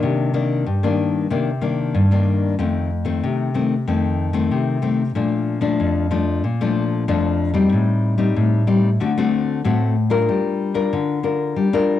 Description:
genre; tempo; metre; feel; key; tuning
samba; 94 BPM; 4/4; straight; G minor; A4 = 440 Hz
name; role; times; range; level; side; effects
nylon-string guitar; solo; 0.0-12.0 s; F2 to Bb4; -17 LUFS; left 2 dB; cassette tape
room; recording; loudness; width
wet studio reverb, RT60 0.6 s; home recording on cassette; -17 LUFS; side -12 dB against mid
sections
0.0-12.0 A section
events
none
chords
0.0 Cm9; 2.6 F7; 5.2 Bbmaj7; 7.7 Am7b5; 9.0 D7; 10.3 Gm7

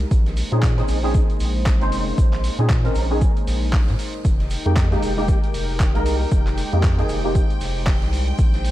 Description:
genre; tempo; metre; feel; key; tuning
deep house; 116 BPM; 4/4; swing 59% on 16ths; F minor; A4 = 440 Hz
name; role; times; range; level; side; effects
warm analog pad; sustained chords; 0.0-8.7 s; Ab3 to C5; -30 LUFS; left 1 dB; chorus, sidechain pumping
round analog bass; bass; 0.0-8.7 s; F1 to Bb2; -22 LUFS; equal; none
dusty soul sampler-style drum kit; drums; 0.0-8.7 s; handclaps, hi-hat; -31 LUFS; right 1 dB; none
electronic kick drum; drums; 0.1-8.5 s; none; -19 LUFS; equal; none
oversized low-tuned drum kit; drums; 0.1-8.7 s; hi-hat, shaker, snare drum; -39 LUFS; right 1 dB; sidechain pumping on hats, high-pass filter on hats, high-pass filter on snare, sidechain pumping on perc, high-pass filter on perc, high-pass filter on room
percussive organ stab; stabs; 0.5-7.5 s; Ab3 to C5; -26 LUFS; equal; ensemble chorus, sidechain pumping, dub echo
string machine, violins; texture; 4.2-8.7 s; G5; -35 LUFS; equal; ensemble chorus, sidechain pumping
room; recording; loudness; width
studio reverb; dark, warm production, vinyl crackle; -17 LUFS; side -15 dB against mid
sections
0.0-8.7 A section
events
none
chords
0.1 Bbm11; 4.2 Fm11

